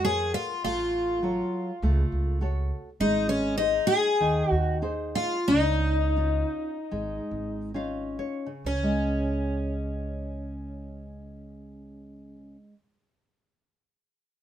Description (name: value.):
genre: fado-style ballad.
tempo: 64-103 BPM.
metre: 4/4.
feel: rubato.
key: Db major.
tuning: A4 = 440 Hz.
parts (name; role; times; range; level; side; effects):
picked twelve-string acoustic guitar; melody; 0.0-12.6 s; Db4 to Ab4; -26 LUFS; left 1 dB; none.
nylon-string guitar; accompaniment; 0.0-12.7 s; Db3 to F5; -32 LUFS; equal; none.
upright bass; bass; 0.0-12.5 s; Ab1 to F2; -29 LUFS; right 1 dB; none.
room: light reverb.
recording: minimal, uncompressed stereo recording.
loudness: -24 LUFS.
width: side -10 dB against mid.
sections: 0.0-8.7 A section; 8.7-12.3 B section.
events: slowing down 3.0-8.7; nylon-string guitar fill 7.3-8.7.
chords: 0.0 Bbm7; 0.6 Gbm/A; 3.0 Ab; 5.5 Dbadd9; 8.7 Db5.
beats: 0.05 | 0.65 1.24 1.83 2.42 | 3.01 3.60 4.21 4.83 | 5.48 6.17 6.92 7.75 | 8.66 9.58 10.48 11.38.